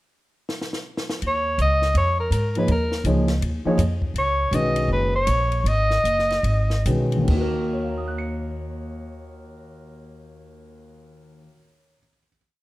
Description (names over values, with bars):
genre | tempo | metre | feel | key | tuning
modal jazz | 138-165 BPM | 4/4 | swing 63% on 8ths | Eb minor | A4 = 439 Hz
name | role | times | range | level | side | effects
compact cocktail drum kit | drums | 0.5-7.4 s | crash cymbal, hi-hat, kick drum, ride cymbal, snare drum | -33 LUFS | left 1 dB | none
upright bass | bass | 1.2-11.5 s | Gb1 to Ab2 | -23 LUFS | equal | none
warm soprano saxophone | melody | 1.3-6.9 s | Bb4 to Eb5 | -22 LUFS | equal | none
dark concert grand piano | accompaniment | 2.6-12.4 s | Eb2 to Db7 | -25 LUFS | equal | none
room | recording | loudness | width
moderate large studio reverb, RT60 1.3 s | none | -20 LUFS | side -17 dB against mid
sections
0.0-1.2 pickup bar; 1.2-7.3 A section; 7.3-10.8 final chord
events
drum fill 0.5-1.2; slowing down 4.2-7.3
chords
0.0 N.C.; 1.2 Eb9sus4; 4.2 Db9sus4; 7.3 Ebm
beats
0.13 0.50 0.86 | 1.22 1.59 1.95 2.32 | 2.69 3.05 3.42 3.79 | 4.15 4.52 4.89 5.27 | 5.65 6.05 6.45 6.86 | 7.29 7.72 8.16 8.59 | 9.02 9.46 9.89 10.32